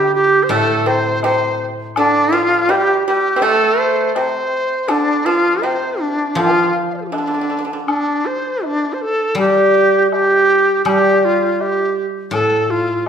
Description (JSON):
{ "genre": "chinese traditional, Chinese chamber ensemble", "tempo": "82 BPM", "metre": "4/4", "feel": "rubato", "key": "D yu mode", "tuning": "A4 = 438 Hz", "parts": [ { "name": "large dizi", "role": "melody", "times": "0.0-13.1 s", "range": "D4 to F5", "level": "-15 LUFS", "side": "right 1 dB", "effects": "none" }, { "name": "pipa", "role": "second line", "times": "0.0-7.8 s", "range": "C3 to C4", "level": "-20 LUFS", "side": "right 2 dB", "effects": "none" }, { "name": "guzheng", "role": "accompaniment", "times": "0.0-13.1 s", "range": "A2 to G3", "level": "-20 LUFS", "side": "left 2 dB", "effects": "none" }, { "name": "woodblock", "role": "percussion", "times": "0.5-13.1 s", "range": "none", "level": "-27 LUFS", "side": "left 3 dB", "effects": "none" } ], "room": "wet recital hall reverb, RT60 1.4 s", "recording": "recorded in a church or concert hall", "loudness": "-13 LUFS", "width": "side -8 dB against mid", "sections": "0.0-13.1 A section", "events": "none", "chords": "none", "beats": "0.50 1.23 | 1.96 2.69 3.43 4.16 | 4.89 5.62 6.37 7.12 | 7.87 8.63 9.38 10.12 | 10.86 11.59 12.32 13.05" }